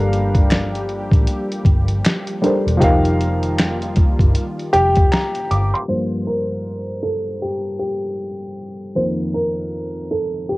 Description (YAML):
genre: lo-fi hip hop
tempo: 78 BPM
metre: 4/4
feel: swing 60% on 16ths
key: G minor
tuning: A4 = 440 Hz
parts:
  - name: dark upright piano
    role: accompaniment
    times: 0.0-10.6 s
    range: F2 to D6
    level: -20 LUFS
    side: equal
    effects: cassette tape
  - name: warm analog pad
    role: sustained chords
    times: 0.0-5.9 s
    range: Eb3 to G4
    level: -28 LUFS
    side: equal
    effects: chorus, cassette tape
  - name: vintage muted fingered electric bass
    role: bass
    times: 0.0-5.7 s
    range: E1 to A1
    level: -20 LUFS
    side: equal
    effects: none
  - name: dusty soul sampler-style drum kit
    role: drums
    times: 0.1-5.9 s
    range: finger snaps, hi-hat, kick drum, snare drum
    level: -16 LUFS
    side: equal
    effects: cassette tape
  - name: finger snaps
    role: percussion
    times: 0.5-5.3 s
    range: none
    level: -30 LUFS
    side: left 1 dB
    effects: none
room: little or no reverb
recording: home recording on cassette, low-pass filter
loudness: -16 LUFS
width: side -21 dB against mid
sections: 0.0-5.9 A section; 5.9-10.6 B section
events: upright piano solo 5.9-10.6; filter sweep 5.9-10.6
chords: 0.0 Gm9; 2.8 F9sus4; 5.9 Gm7; 9.0 F7sus4